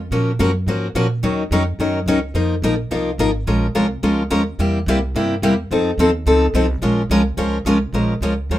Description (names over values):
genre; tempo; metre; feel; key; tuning
acoustic string swing (jazz manouche); 215 BPM; 4/4; swing 57% on 8ths; Bb minor; A4 = 440 Hz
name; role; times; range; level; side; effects
upright bass; bass; 0.0-8.6 s; Ab1 to Bb2; -22 LUFS; right 1 dB; none
picked steel-string acoustic guitar; accompaniment; 0.1-8.6 s; C3 to Bb4; -17 LUFS; left 1 dB; none
room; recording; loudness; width
light reverb; minimal, uncompressed stereo recording; -16 LUFS; side -14 dB against mid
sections
0.0-7.9 A section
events
none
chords
0.1 Gbmaj7; 1.2 Ebm7; 2.4 F7sus4; 3.5 Bbm7; 4.6 C7; 5.7 F7; 6.8 Bbm7